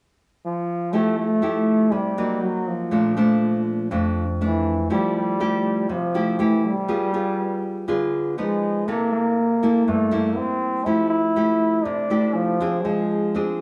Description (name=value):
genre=bossa nova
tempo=121 BPM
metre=4/4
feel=straight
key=F major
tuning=A4 = 436 Hz
part: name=warm trombone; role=melody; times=0.5-13.6 s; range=E3 to E4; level=-25 LUFS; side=equal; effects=none
part: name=nylon-string guitar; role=accompaniment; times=0.9-13.6 s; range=F2 to A4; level=-25 LUFS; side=equal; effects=none
room=moderate echo chamber reverb, RT60 1.6 s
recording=small room ambience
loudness=-22 LUFS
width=mono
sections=0.9-13.6 A section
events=none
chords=0.0 N.C.; 0.9 Fmaj9; 2.4 Ebmadd9; 2.9 Bbmaj7; 4.9 Fmaj9; 6.9 G7b9; 8.4 Fm7b5; 8.9 C6; 10.4 C7; 10.9 Fmaj9; 12.8 Fm6